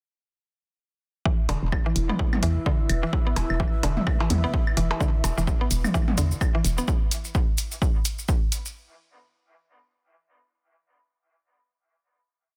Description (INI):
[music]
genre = minimal techno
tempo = 128 BPM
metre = 4/4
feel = swing 58% on 16ths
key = unclear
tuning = A4 = 440 Hz
[part]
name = mallet-like synth pluck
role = riff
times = 1.3-6.8 s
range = D3 to B3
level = -34 LUFS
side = equal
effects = chorus, sidechain pumping, dub echo
[part]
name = electronic kick drum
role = drums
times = 1.3-8.4 s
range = none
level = -27 LUFS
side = equal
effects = small room ambience
[part]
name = pulsing gated texture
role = texture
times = 1.7-6.9 s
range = E4 to E5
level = -44 LUFS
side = equal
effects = none
[part]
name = warbly tape-like pad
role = texture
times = 1.9-6.9 s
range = E4 to E6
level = -39 LUFS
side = equal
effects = chorus, built-in reverb, sidechain pumping
[part]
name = hollow knocking FM bass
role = bass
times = 1.5-6.8 s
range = E1 to E2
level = -27 LUFS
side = equal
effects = sidechain pumping
[part]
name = electronic hi-hat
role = drums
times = 1.5-8.6 s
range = none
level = -33 LUFS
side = equal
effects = small room ambience
[part]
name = electronic percussion blips, claves and toms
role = percussion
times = 1.5-6.5 s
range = none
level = -32 LUFS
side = equal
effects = small room ambience, digital delay
[part]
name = maracas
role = percussion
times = 5.0-8.7 s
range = none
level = -36 LUFS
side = equal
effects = none
[sound]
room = little or no reverb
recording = dense, heavily limited modern master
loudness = -24 LUFS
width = mono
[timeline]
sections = 1.3-8.8 groove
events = none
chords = 1.3 E5